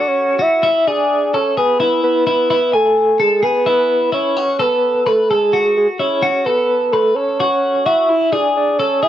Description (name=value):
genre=indie pop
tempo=129 BPM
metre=4/4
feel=straight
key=unclear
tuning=A4 = 438 Hz
part: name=soft octave-layered synth lead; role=melody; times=0.0-9.1 s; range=G#4 to E5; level=-14 LUFS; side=right 1 dB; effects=chorus, tremolo
part: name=twelve-string electric guitar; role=arpeggios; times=0.0-9.1 s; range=E4 to G#5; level=-18 LUFS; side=left 3 dB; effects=tape echo
room=light reverb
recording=dry, close 1970s-style studio recording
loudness=-13 LUFS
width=side -11 dB against mid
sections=0.0-9.1 A section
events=none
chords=0.0 F#5; 0.6 Eadd11; 4.4 A5; 6.2 F#m; 8.1 E